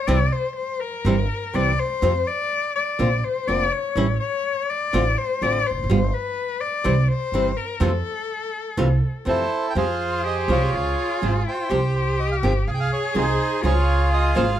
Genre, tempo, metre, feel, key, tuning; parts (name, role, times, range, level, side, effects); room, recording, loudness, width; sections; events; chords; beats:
tango; 124 BPM; 4/4; rubato; F major, F minor from 9.8 s; A4 = 440 Hz
rich cello; second line; 0.0-14.6 s; F4 to D5; -25 LUFS; left 5 dB
nylon-string guitar; accompaniment; 0.1-14.5 s; C3 to C5; -23 LUFS; right 1 dB
upright bass; bass; 0.1-14.6 s; E1 to F2; -23 LUFS; right 1 dB
bandoneon; melody; 9.3-14.6 s; Eb4 to G5; -24 LUFS; right 4 dB; slapback echo
little or no reverb; close, detailed microphones; -20 LUFS; side -11 dB against mid
0.0-9.8 A section; 9.8-14.6 B section
cello solo 0.0-9.8
0.1 C; 2.0 F5; 3.0 Bbadd9; 4.0 A7; 4.9 Dm7/A; 5.9 G; 6.9 C; 7.8 Fmaj7; 9.8 Fmadd9; 10.7 Dbmaj7; 11.7 Csus4; 12.7 Fm7/C; 13.6 Dbadd9
| 0.08 0.57 1.05 1.54 | 2.03 2.52 3.00 3.48 | 3.97 4.45 4.93 5.42 | 5.90 6.38 6.85 7.33 | 7.82 8.30 8.78 9.27 | 9.76 10.24 10.73 11.21 | 11.70 12.18 12.67 13.15 | 13.63 14.11